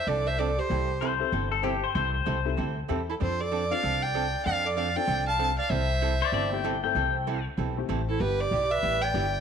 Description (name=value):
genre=country, western swing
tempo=192 BPM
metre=4/4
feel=swing 63% on 8ths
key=C major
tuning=A4 = 439 Hz
part: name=clear fiddle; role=melody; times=0.0-1.0, 3.1-9.4 s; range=A4 to A5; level=-28 LUFS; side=equal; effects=none
part: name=mellow clarinet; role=second line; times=0.0-1.0, 3.1-9.4 s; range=E4 to F5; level=-33 LUFS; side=right 8 dB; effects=none
part: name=archtop guitar, miked and amplified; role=accompaniment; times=0.1-9.3 s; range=C3 to A4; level=-34 LUFS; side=right 10 dB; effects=none
part: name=upright bass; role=bass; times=0.1-9.4 s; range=G1 to F2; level=-30 LUFS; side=left 2 dB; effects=none
part: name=pedal steel guitar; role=second line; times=1.0-2.8, 6.2-7.4 s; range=G4 to G5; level=-29 LUFS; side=left 9 dB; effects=none
part: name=honky-tonk upright piano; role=accompaniment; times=1.2-8.2 s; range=A3 to C5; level=-36 LUFS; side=left 12 dB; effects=none
room=moderate echo chamber reverb, RT60 1.7 s, studio ambience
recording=1960s-style stereo with parts hard left and right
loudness=-25 LUFS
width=side -7 dB against mid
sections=0.0-9.4 A section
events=none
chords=0.0 F6; 0.7 C6; 3.2 F6; 5.7 C6; 8.2 G6